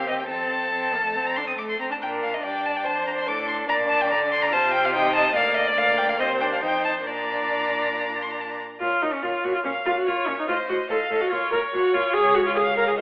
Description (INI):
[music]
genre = quick classical-period movement for string quartet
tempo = 143 BPM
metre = 4/4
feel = straight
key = Bb major, Bb minor from 8.8 s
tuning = A4 = 440 Hz
[part]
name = clear violin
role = melody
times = 0.0-13.0 s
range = Db5 to Eb6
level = -25 LUFS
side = left 1 dB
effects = none
[part]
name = rich violin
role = second line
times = 0.0-13.0 s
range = G4 to F5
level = -26 LUFS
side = equal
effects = none
[part]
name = rich viola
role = accompaniment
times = 0.0-13.0 s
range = A3 to Bb4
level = -25 LUFS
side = equal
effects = none
[part]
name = rich cello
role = bass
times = 0.0-13.0 s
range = Db2 to D3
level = -32 LUFS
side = equal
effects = none
[sound]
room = moderate scoring stage reverb, RT60 1.8 s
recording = telephone sound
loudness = -20 LUFS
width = side -25 dB against mid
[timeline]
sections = 0.0-8.8 A section; 8.8-13.0 B section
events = none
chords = 0.3 F; 2.0 Bb; 2.9 F; 3.7 Bb; 4.5 Cmadd11; 5.4 Bb/D; 6.2 Cm/Eb; 6.6 F7(no3); 7.1 Bb; 8.8 Bbm; 10.5 F7/A; 11.3 Bbm; 12.1 Dbadd11